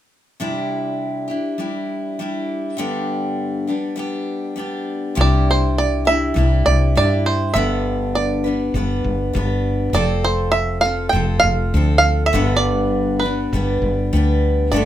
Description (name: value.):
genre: acoustic folk duo or small band.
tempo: 101 BPM.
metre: 4/4.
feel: straight.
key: C major.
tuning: A4 = 440 Hz.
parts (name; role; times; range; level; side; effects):
picked steel-string acoustic guitar; accompaniment; 0.4-14.9 s; G2 to B4; -21 LUFS; left 1 dB; none.
bluegrass banjo; melody; 5.2-14.9 s; B4 to G5; -19 LUFS; right 3 dB; none.
woody fretless electric bass; bass; 5.2-14.9 s; F1 to G2; -19 LUFS; equal; none.
room: wet small room ambience, RT60 0.5 s.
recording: minimal, uncompressed stereo recording.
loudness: -17 LUFS.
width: side -12 dB against mid.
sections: 0.4-5.2 A section; 5.2-14.9 B section.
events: none.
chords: 0.4 Cadd9; 2.8 G; 5.2 Cadd9; 7.6 G; 9.9 F; 12.3 G.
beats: | 0.40 1.00 1.60 2.19 | 2.79 3.39 3.98 4.58 | 5.18 5.77 6.37 6.97 | 7.56 8.16 8.76 9.35 | 9.95 10.54 11.14 11.74 | 12.34 12.93 13.53 14.12 | 14.72.